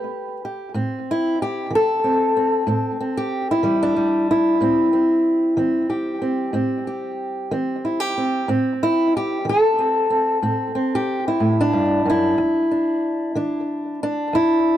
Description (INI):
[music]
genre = acoustic country blues, solo or duo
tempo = 62 BPM (dotted quarters)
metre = 12/8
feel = straight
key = unclear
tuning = A4 = 440 Hz
[part]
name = fingerpicked old ladder-braced acoustic guitar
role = solo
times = 0.0-14.8 s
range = E2 to B4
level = -18 LUFS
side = equal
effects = tape echo
[sound]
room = light reverb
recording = dry, close 1970s-style studio recording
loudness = -18 LUFS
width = side -12 dB against mid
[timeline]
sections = 0.0-14.8 A section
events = none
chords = 0.0 Em (rootless); 0.7 Am7; 12.4 E7(no3)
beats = | 0.74 1.71 2.67 3.63 | 4.60 5.57 6.54 7.51 | 8.48 9.45 10.43 11.40 | 12.38 13.36 14.33